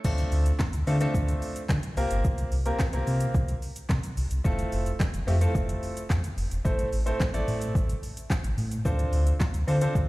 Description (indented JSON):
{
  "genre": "dance-pop",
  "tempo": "109 BPM",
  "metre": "4/4",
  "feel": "straight",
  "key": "D minor",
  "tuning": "A4 = 439 Hz",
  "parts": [
    { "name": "clear baby grand piano", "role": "accompaniment", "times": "0.0-10.1 s", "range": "A3 to D5", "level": "-32 LUFS", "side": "equal", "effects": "sidechain pumping" },
    { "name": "sub bass with octave", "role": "bass", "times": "0.0-10.1 s", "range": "E1 to D3", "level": "-26 LUFS", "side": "equal", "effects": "sidechain pumping" },
    { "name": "smooth R&B drum kit", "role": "drums", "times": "0.0-10.1 s", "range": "crash cymbal, handclaps, hi-hat, kick drum, shaker, snare drum", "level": "-29 LUFS", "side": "equal", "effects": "overdrive" }
  ],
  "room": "little or no reverb",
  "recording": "played on a big sound system in a bare room, stone room reverb",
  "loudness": "-24 LUFS",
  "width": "side -19 dB against mid",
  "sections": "0.0-10.1 A section",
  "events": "none",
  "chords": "0.0 Dm7; 2.0 C7sus4; 4.5 Fmaj7; 6.7 Am; 8.9 Dm7"
}